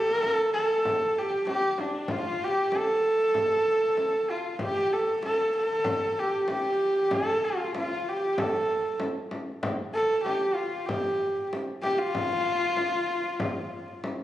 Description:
mongolian traditional, Mongolian folk; 96 BPM; 4/4; straight; A4 = 440 Hz
rich horsehead fiddle; melody; 0.0-14.0 s; D4 to A4; -25 LUFS; equal
frame drum; percussion; 0.1-14.2 s; -35 LUFS; left 1 dB
wet recital hall reverb, RT60 1.4 s; recorded on a phone in the room, studio reverb; -24 LUFS; side -13 dB against mid
0.0-14.2 A section

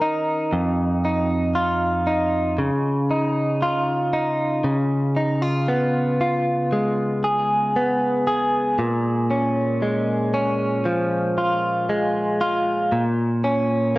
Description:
pop; 58 BPM; 4/4; straight; A4 = 441 Hz
direct-recorded clean electric guitar; solo; 0.0-14.0 s; F2 to Bb4; -19 LUFS; equal
moderate lush hall reverb, RT60 2.0 s; worn, warbling old tape, cassette tape, warbly pitch drift; -19 LUFS; side -19 dB against mid
0.0-4.7 A section; 4.7-14.0 B section
0.0 Eb5; 0.5 Ebsus2/F; 2.6 Dbadd9; 4.7 Db7; 8.8 Bbm7; 12.9 Eb7(no3)/Bb (rootless)

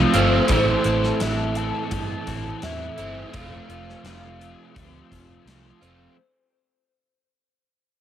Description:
rock, shoegaze and dream pop; 84 BPM; 4/4; straight; F major; A4 = 436 Hz
mellow horn-like synth lead; melody; 0.0-5.5 s; C5 to A5; -30 LUFS; equal; chorus, cassette tape
picked twelve-string acoustic guitar; arpeggios; 0.0-6.5 s; F4 to C5; -30 LUFS; left 8 dB; ensemble chorus, analog delay
biting overdriven guitar; riff; 0.0-6.2 s; A2 to F4; -28 LUFS; left 8 dB; analog chorus
overdriven electric guitar; riff; 0.0-6.2 s; A2 to F4; -25 LUFS; right 7 dB; reverse reverb
vintage muted fingered electric bass; bass; 0.0-6.1 s; F1 to G2; -27 LUFS; equal
gated 80s drum kit; drums; 0.1-6.0 s; hi-hat, kick drum, snare drum; -29 LUFS; equal
small room ambience; home recording on cassette; -20 LUFS; side -10 dB against mid
0.0-6.2 A section
fade-out 0.0-6.2
0.5 Am; 3.3 F

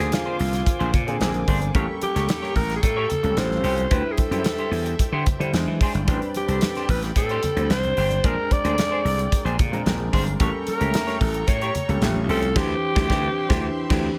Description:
polished 1980s jazz-funk pop; 111 BPM; 4/4; straight; A4 = 440 Hz
growling alto saxophone; melody; 0.0-14.2 s; F4 to D5; -28 LUFS; equal
warm grand piano; accompaniment; 0.0-14.2 s; D3 to C5; -32 LUFS; equal; analog chorus
rich studio string section; sustained chords; 0.0-14.2 s; Bb3 to D6; -40 LUFS; equal
semi-hollow electric guitar; riff; 0.0-14.1 s; C#4 to C#5; -33 LUFS; equal; lush chorus
gritty slap bass; bass; 0.0-14.1 s; G1 to E3; -27 LUFS; equal; overdrive
modern studio drum kit; drums; 0.0-14.1 s; crash cymbal, hi-hat, kick drum, snare drum; -26 LUFS; equal
congas; percussion; 0.1-12.5 s; -36 LUFS; equal
studio ambience; -22 LUFS; mono
0.0-14.2 A section
band accent 12.6-14.2; drum fill 13.6-14.2
0.0 Bb9; 1.8 A7b9; 3.4 A7alt; 3.9 D9sus4; 5.5 E7alt; 6.1 Am11; 8.2 Bb9; 10.4 A7b9; 12.0 A7alt; 12.6 D9sus4

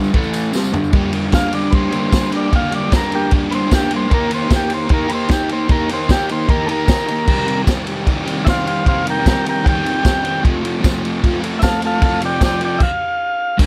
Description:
garage rock duo or trio; 152 BPM; 4/4; straight; G minor; A4 = 443 Hz
crunchy overdriven guitar; riff; 0.0-13.7 s; F2 to G4; -22 LUFS; equal
tambourine; percussion; 0.0-12.5 s; -36 LUFS; equal
vintage drum kit; drums; 0.1-13.7 s; crash cymbal, kick drum, ride cymbal, snare drum, toms; -20 LUFS; equal
combo organ; melody; 1.3-13.6 s; Bb3 to G5; -23 LUFS; equal
light reverb; -17 LUFS; mono
0.9-13.6 A section
drum fill 0.5-0.9; transistor combo organ solo 0.9-13.6; stop 12.8-13.6
0.1 A5; 0.5 G5; 0.9 Gm; 4.1 Eb; 7.3 Cm; 10.4 F

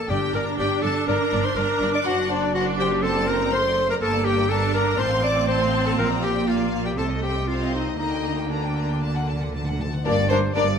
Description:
quick classical-period movement for symphony orchestra; 121 BPM; 4/4; uneven beats, rubato; G minor; A4 = 441 Hz
clear clarinet; second line; 0.0-10.7 s; D4 to D5; -25 LUFS; left 1 dB
clear studio violin section; second line; 0.0-10.6 s; D4 to D6; -30 LUFS; left 4 dB
clear studio viola section; accompaniment; 0.0-10.6 s; G3 to D4; -28 LUFS; right 2 dB
clear studio violin section; melody; 0.1-10.8 s; Bb4 to Bb5; -31 LUFS; left 4 dB
rich studio cello section; bass; 0.1-10.8 s; F#2 to D3; -29 LUFS; right 4 dB
rich studio double bass section; bass; 0.1-10.8 s; F#1 to D2; -28 LUFS; right 2 dB
timpani; percussion; 0.1-0.8, 9.0-10.0 s; G2 to D3; -31 LUFS; left 2 dB
silver concert flute; second line; 10.0-10.6 s; C5 to D5; -27 LUFS; left 4 dB
mellow bassoon; accompaniment; 10.1-10.7 s; Bb3; -28 LUFS; right 2 dB
warm French horn section; sustained chords; 10.1-10.2 s; Bb3 to D4; -30 LUFS; left 6 dB
moderate recital hall reverb, RT60 1.4 s; -20 LUFS; side -7 dB against mid
0.0-10.1 A section
timpani fill 9.0-10.1
0.1 G5; 2.1 D7/F#; 4.0 Gm; 5.0 F/A; 6.0 Bb; 7.0 Adim/C; 8.0 Gm/D; 10.1 Gm

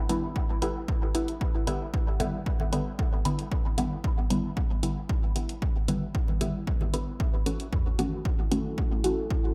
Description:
dub techno; 114 BPM; 4/4; straight; E dorian; A4 = 440 Hz
filtered dub chord stab; stabs; 0.1-9.2 s; D3 to F#4; -33 LUFS; equal; phaser, sidechain pumping, dub echo
electronic hi-hat; drums; 0.1-9.2 s; -41 LUFS; equal
electronic congas and toms; percussion; 0.1-8.6 s; -40 LUFS; equal; sidechain pumping on perc, sidechain pumping on toms, dub echo
electronic kick drum; drums; 0.4-9.4 s; -30 LUFS; equal
deep dark ambient pad; sustained chords; 8.2-9.5 s; E4 to A4; -39 LUFS; equal; chorus, built-in reverb, sidechain pumping
light reverb; echo-heavy mix; -28 LUFS; mono
0.0-9.5 A section
filter sweep on synth stab 0.0-9.5
0.0 Em7; 7.2 F#m7

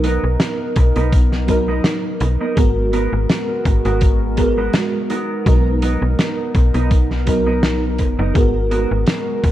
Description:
vaporwave; 83 BPM; 4/4; swing 55% on 16ths; B major; A4 = 440 Hz
FM electric piano with soft pad layer; accompaniment; 0.0-9.5 s; F#3 to A#4; -21 LUFS; right 1 dB; tremolo, ensemble chorus, cassette tape, analog delay
warbly tape-like pad; sustained chords; 0.0-9.5 s; G#3 to A#4; -27 LUFS; equal; chorus, built-in reverb
mellow electric guitar; riff; 0.0-9.5 s; B3 to A#4; -26 LUFS; right 3 dB; lush chorus, vintage 12-bit sampler grit, low-pass filter, analog delay
slap-like FM bass; bass; 0.0-9.5 s; F#1 to B1; -19 LUFS; equal
loose indie drum kit; drums; 0.0-9.5 s; hi-hat, snare drum; -22 LUFS; equal
electronic kick drum; drums; 0.8-9.5 s; -16 LUFS; equal
light reverb, small room ambience; dark, warm production, cassette tape; -15 LUFS; side -13 dB against mid
0.0-9.5 A section
0.0 Bmaj7; 2.6 G#m9; 5.1 Bmaj7; 8.4 G#m9

